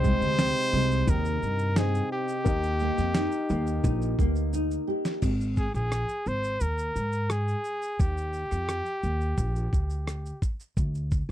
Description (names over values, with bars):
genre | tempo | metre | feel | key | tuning
acoustic pop | 87 BPM | 4/4 | straight | Eb major | A4 = 438 Hz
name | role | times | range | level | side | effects
clear trumpet | melody | 0.0-10.4 s | G4 to C5 | -30 LUFS | equal | none
nylon-string guitar | accompaniment | 0.0-5.8 s | C3 to G4 | -30 LUFS | right 1 dB | double-tracked left and right
warm upright piano | accompaniment | 0.0-5.2 s | Bb3 to Eb5 | -37 LUFS | left 8 dB | none
upright bass | bass | 0.0-11.3 s | Ab1 to Ab2 | -28 LUFS | equal | none
dusty soul sampler-style drum kit | drums | 0.0-11.3 s | crash cymbal, kick drum, rim click, shaker, snare drum | -28 LUFS | equal | none
room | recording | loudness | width
little or no reverb | dry, close 1970s-style studio recording | -25 LUFS | side -12 dB against mid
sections
0.0-5.2 A section; 5.2-11.3 B section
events
drum fill 4.5-5.2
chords
0.0 Ab/C; 2.5 Eb; 5.2 Absus2; 8.0 Ebmaj7; 10.8 N.C.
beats
0.39 1.08 1.77 | 2.46 3.15 3.84 4.53 | 5.23 5.92 6.61 7.30 | 8.00 8.69 9.38 10.08 | 10.77